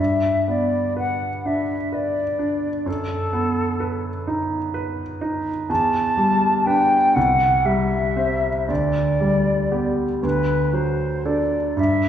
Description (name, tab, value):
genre	classical, romantic duo for flute and grand piano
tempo	38-43 BPM (dotted quarters)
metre	6/8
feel	rubato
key	G major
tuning	A4 = 439 Hz
part	concert flute	melody	0.0-12.1 s	A4 to A5	-21 LUFS	left 1 dB	none
part	clear baby grand piano	accompaniment	0.0-12.1 s	C2 to C5	-22 LUFS	right 1 dB	none
room	wet recital hall reverb, RT60 1.6 s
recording	heard from further back in the room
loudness	-19 LUFS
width	side -10 dB against mid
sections	0.0-12.1 A section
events	none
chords	0.0 G; 2.9 B7/F#; 5.7 Em7; 7.2 C; 8.7 G/D; 10.2 D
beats	1.47 | 2.87 4.29 | 5.70 7.16 | 8.70 10.24 | 11.78